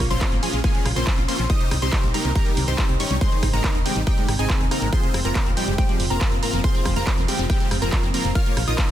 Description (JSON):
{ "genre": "uplifting trance", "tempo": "140 BPM", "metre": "4/4", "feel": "straight", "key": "F minor", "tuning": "A4 = 440 Hz", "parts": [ { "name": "supersaw chords", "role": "melody", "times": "0.0-8.9 s", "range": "G3 to F5", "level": "-27 LUFS", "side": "equal", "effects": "sidechain pumping, digital delay" }, { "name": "analog pluck", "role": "second line", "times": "0.0-8.9 s", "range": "G5 to F6", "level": "-31 LUFS", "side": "right 1 dB", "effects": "chorus, sidechain pumping, digital delay" }, { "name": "lush unison pad", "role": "sustained chords", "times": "0.0-8.9 s", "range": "Ab2 to G4", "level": "-32 LUFS", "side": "right 1 dB", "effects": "chorus, sidechain pumping" }, { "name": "liquid acid bass", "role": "arpeggios", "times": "0.0-8.9 s", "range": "G2 to F4", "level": "-31 LUFS", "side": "left 2 dB", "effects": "analog chorus, sidechain pumping, digital delay" }, { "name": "solid FM bass", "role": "bass", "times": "0.0-8.8 s", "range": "Eb1 to C2", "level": "-25 LUFS", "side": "equal", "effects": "sidechain pumping" }, { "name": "electronic kick drum", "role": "drums", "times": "0.0-8.9 s", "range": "none", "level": "-21 LUFS", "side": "equal", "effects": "none" }, { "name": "punchy analog drum machine", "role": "drums", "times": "0.0-8.9 s", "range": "handclaps, hi-hat, rim click", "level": "-29 LUFS", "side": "right 1 dB", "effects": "sidechain pumping on hats, sidechain pumping on cymbals" } ], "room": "little or no reverb", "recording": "dense, heavily limited modern master", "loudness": "-19 LUFS", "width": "side -12 dB against mid", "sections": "0.0-8.9 A section", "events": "none", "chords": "0.0 Bbm; 1.5 Cm; 3.2 Ab; 4.9 Fm; 8.4 Bbm" }